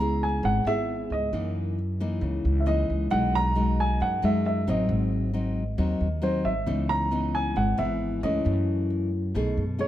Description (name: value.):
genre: bossa nova.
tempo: 135 BPM.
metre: 4/4.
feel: straight.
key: unclear.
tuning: A4 = 443 Hz.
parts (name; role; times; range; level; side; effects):
dark baby grand piano; melody; 0.0-9.9 s; B#4 to A#5; -28 LUFS; right 2 dB; none.
nylon-string guitar; accompaniment; 0.0-9.9 s; F#2 to G#4; -28 LUFS; left 2 dB; none.
upright bass; bass; 0.0-9.9 s; G#1 to F#2; -28 LUFS; equal; none.
room: light reverb.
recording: none.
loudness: -23 LUFS.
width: side -13 dB against mid.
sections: 0.0-9.9 A section.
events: none.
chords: 0.0 C#m7; 1.3 F#6; 3.1 B6; 4.9 G#7; 6.7 C#m9; 8.5 F#m7; 9.3 B13.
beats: 0.00 0.44 0.89 | 1.33 1.78 2.22 2.67 | 3.11 3.56 4.00 4.45 | 4.89 5.34 5.79 6.23 | 6.67 7.12 7.57 8.01 | 8.46 8.90 9.34 9.79.